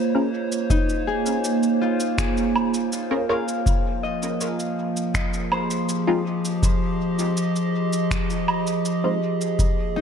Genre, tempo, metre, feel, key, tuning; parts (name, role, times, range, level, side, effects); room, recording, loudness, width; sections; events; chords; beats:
ambient dub; 81 BPM; 4/4; straight; F minor; A4 = 439 Hz
warbly tape-like pad; sustained chords; 0.0-10.0 s; F3 to Eb5; -23 LUFS; right 2 dB; chorus, built-in reverb
filtered dub chord stab; stabs; 0.1-9.2 s; Ab3 to Bb4; -28 LUFS; left 2 dB; phaser, lush chorus, cassette tape, dub echo
electronic cabasa, finger snaps and woodblock; drums; 0.5-9.7 s; -29 LUFS; right 1 dB; dub echo
Celtic harp; arpeggios; 0.7-10.0 s; Eb4 to F5; -29 LUFS; left 6 dB; dub echo
electronic kick drum; drums; 0.7-9.7 s; -23 LUFS; equal
light reverb, digital ambience; -20 LUFS; side -7 dB against mid
0.0-10.0 A section
0.0 Bbm7; 3.7 Fm7
| 0.70 1.44 2.18 2.92 | 3.66 4.41 5.15 5.89 | 6.63 7.37 8.11 8.85 | 9.59